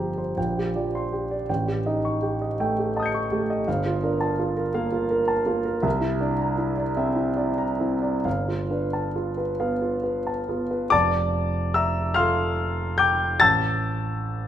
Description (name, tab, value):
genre	classical, impressionist solo piano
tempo	44-56 BPM (dotted quarters)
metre	6/8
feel	rubato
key	F major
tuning	A4 = 440 Hz
part	warm concert grand piano	solo	0.0-14.5 s	F1 to C#7	-22 LUFS	equal	none
room	moderate recital hall reverb, RT60 1.5 s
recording	none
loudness	-22 LUFS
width	side -10 dB against mid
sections	0.0-10.9 A section; 10.9-14.5 B section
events	none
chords	0.4 Bb69; 1.5 A7#11; 3.7 Gm9; 5.8 C9; 8.3 G9; 10.9 Fmaj7; 13.4 A5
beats	0.37 | 1.49 2.59 | 3.67 4.76 | 5.85 6.98 | 8.26 9.59 | 10.92 12.17 | 13.41